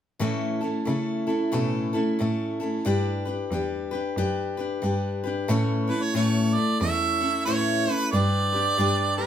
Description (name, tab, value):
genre	honky-tonk and classic country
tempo	91 BPM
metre	4/4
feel	swing 62% on 8ths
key	unclear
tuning	A4 = 444 Hz
part	picked steel-string acoustic guitar	accompaniment	0.2-9.3 s	A2 to C#5	-25 LUFS	left 1 dB	none
part	clear cello	bass	0.2-9.3 s	E2 to C#3	-28 LUFS	equal	none
part	bright harmonica	melody	5.9-9.3 s	B4 to E5	-25 LUFS	right 4 dB	none
room	wet studio ambience, RT60 0.4 s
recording	band playing live in one room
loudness	-23 LUFS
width	side -9 dB against mid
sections	0.2-5.5 A section; 5.5-9.3 B section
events	none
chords	0.2 A; 2.9 G; 5.5 A; 8.1 G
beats	| 0.21 0.88 1.53 2.20 | 2.86 3.52 4.18 4.83 | 5.49 6.15 6.81 7.47 | 8.13 8.78